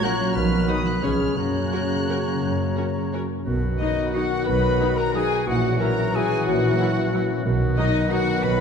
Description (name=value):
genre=classical, orchestral ballroom waltz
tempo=160-199 BPM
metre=3/4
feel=rubato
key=F# major, B major from 3.5 s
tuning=A4 = 440 Hz
part: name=muted chamber violin section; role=melody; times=0.0-8.6 s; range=D#5 to F#6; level=-32 LUFS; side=left 4 dB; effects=none
part: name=bright silver concert flute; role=second line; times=0.0-8.6 s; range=D#5 to B5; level=-32 LUFS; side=left 1 dB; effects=none
part: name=clear oboe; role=second line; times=0.0-8.6 s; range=F#4 to C#5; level=-33 LUFS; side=right 1 dB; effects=none
part: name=dark clarinet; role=second line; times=0.0-8.6 s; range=D#4 to B4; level=-30 LUFS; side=left 1 dB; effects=none
part: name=muted chamber violin section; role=second line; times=0.0-8.6 s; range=D#4 to F#5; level=-31 LUFS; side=left 6 dB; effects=none
part: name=dark bassoon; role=accompaniment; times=0.0-8.6 s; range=C#3 to F#3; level=-32 LUFS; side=right 2 dB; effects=none
part: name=muted symphonic viola section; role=accompaniment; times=0.0-8.2 s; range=F#3 to B4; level=-34 LUFS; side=right 1 dB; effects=none
part: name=mellow trombone section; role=sustained chords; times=0.0-8.6 s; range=A#2 to G#3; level=-30 LUFS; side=right 3 dB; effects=none
part: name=warm French horn section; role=sustained chords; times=0.0-8.6 s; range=A#3 to F#4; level=-29 LUFS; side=left 5 dB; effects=none
part: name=concert harp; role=arpeggios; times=0.0-8.6 s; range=F#2 to D#6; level=-28 LUFS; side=left 6 dB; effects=none
part: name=muted chamber cello section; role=bass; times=0.0-8.6 s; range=A#2 to F#3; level=-29 LUFS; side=right 4 dB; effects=none
part: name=muted chamber double bass section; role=bass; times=0.4-8.6 s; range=A#1 to F#2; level=-28 LUFS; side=right 3 dB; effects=none
room=wet concert hall reverb, RT60 1.9 s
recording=dark, warm production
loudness=-20 LUFS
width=side -6 dB against mid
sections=0.0-3.5 A section; 3.5-8.6 B section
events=none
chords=0.4 B; 1.0 C#7; 1.4 F#; 3.5 B; 5.5 F#7/A#; 7.5 B